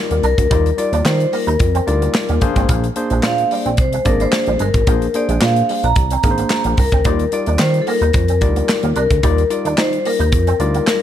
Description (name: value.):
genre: early-eighties boogie funk.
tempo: 110 BPM.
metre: 4/4.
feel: straight.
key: Eb major.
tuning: A4 = 439 Hz.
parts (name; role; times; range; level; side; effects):
vibraphone with medium hard mallets; melody; 0.0-11.0 s; A4 to Bb5; -19 LUFS; left 2 dB; slapback echo.
barky tine electric piano; accompaniment; 0.0-11.0 s; G3 to D5; -23 LUFS; moving between left 7 dB and right 2 dB; overdrive, auto-pan.
electric guitar with an envelope filter; riff; 0.1-10.8 s; G3 to Eb4; -27 LUFS; right 8 dB; ensemble chorus.
chorused synth bass; bass; 0.1-10.8 s; G1 to Eb3; -18 LUFS; right 1 dB; none.
modern studio drum kit; drums; 0.1-11.0 s; handclaps, hi-hat, kick drum, snare drum; -19 LUFS; equal; none.
room: small room ambience.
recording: none.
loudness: -14 LUFS.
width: side -10 dB against mid.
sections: 0.0-11.0 A section.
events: none.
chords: 0.0 Ebmaj9; 2.4 Bb9; 7.1 Ebmaj9.